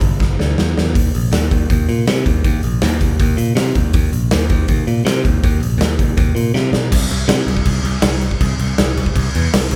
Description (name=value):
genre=punk rock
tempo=161 BPM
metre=4/4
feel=straight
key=unclear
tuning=A4 = 439 Hz
part: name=modern bright picked electric bass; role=bass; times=0.0-9.8 s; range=G1 to C3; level=-19 LUFS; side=equal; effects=none
part: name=big rock drum kit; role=drums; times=0.0-9.8 s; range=crash cymbal, hi-hat, kick drum, snare drum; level=-19 LUFS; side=equal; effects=none
room=light reverb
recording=band playing live in one room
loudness=-16 LUFS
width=mono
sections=0.0-6.9 A section; 6.9-9.8 B section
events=drum fill 0.2-0.9, 6.6-6.9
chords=none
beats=0.20 0.57 | 0.95 1.32 1.70 2.07 | 2.44 2.82 3.19 3.57 | 3.94 4.31 4.69 5.06 | 5.43 5.81 6.18 6.55 | 6.92 7.30 7.67 8.04 | 8.41 8.79 9.16 9.53